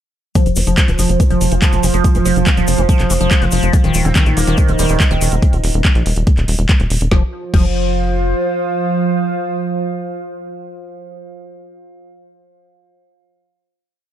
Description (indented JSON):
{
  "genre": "psychedelic trance",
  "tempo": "142 BPM",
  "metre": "4/4",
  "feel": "straight",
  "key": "unclear",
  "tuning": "A4 = 445 Hz",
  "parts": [
    { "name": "evolving wavetable pad", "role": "sustained chords", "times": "1.0-10.8 s", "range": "F3", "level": "-23 LUFS", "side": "right 4 dB", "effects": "chorus, built-in reverb, sidechain pumping" },
    { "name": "liquid acid bass", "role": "riff", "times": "0.4-7.7 s", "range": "D3 to F3", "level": "-20 LUFS", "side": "moving between left 7 dB and right 9 dB", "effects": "phaser, auto-pan, sidechain pumping, tape echo" },
    { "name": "electronic kick drum", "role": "drums", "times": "0.4-7.7 s", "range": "none", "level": "-13 LUFS", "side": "equal", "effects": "overdrive" },
    { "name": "garage drum kit", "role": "drums", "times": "0.4-7.7 s", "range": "crash cymbal, handclaps, hi-hat, snare drum", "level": "-22 LUFS", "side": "equal", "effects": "overdrive" },
    { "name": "egg shaker", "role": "percussion", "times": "0.4-5.4 s", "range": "none", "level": "-28 LUFS", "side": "left 6 dB", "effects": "none" },
    { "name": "warbly tape-like pad", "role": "texture", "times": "0.6-11.0 s", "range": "Eb4 to F5", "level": "-23 LUFS", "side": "equal", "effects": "chorus, built-in reverb, sidechain pumping" },
    { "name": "tight sequencer bass", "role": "bass", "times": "0.5-8.3 s", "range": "Eb1 to Bb1", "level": "-16 LUFS", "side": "equal", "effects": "none" },
    { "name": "metallic wobble bass", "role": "second line", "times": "4.1-5.0 s", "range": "G3 to C4", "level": "-28 LUFS", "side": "right 3 dB", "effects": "chorus, sidechain pumping, high-pass filter, digital delay" }
  ],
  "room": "light reverb",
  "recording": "dark, warm production",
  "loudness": "-12 LUFS",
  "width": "side -11 dB against mid",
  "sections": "0.4-7.1 drop; 7.1-10.5 final chord",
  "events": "drop 0.4-7.1",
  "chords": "0.4 F5; 3.7 Eb5; 7.1 F5"
}